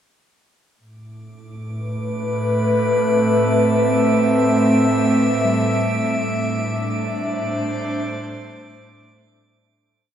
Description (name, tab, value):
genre	ambient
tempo	free time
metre	none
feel	none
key	A minor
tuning	A4 = 440 Hz
part	airy breathy pad	sustained chords	1.6-9.9 s	A2 to E5	-18 LUFS	equal	chorus, shimmer reverb
part	dark studio cello section	bass	0.8-9.8 s	A2	-36 LUFS	left 1 dB	none
part	drifting glass-harmonics texture	texture	1.7-9.9 s	D6	-31 LUFS	right 3 dB	chorus, built-in reverb, shimmer reverb
part	tine electric piano	arpeggios	4.5-10.1 s	G3 to C4	-29 LUFS	equal	diffuse ambient delay
room	wet huge ambient reverb, RT60 7.8 s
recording	none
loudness	-17 LUFS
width	side -9 dB against mid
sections	0.8-9.9 A section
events	fade-in on tine electric piano 0.8-9.9; fade-in on synth texture 0.8-9.9; filter sweep on analog synth pad 0.8-9.9; fade-out 5.3-9.9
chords	0.8 Amadd9; 5.3 Cadd9/A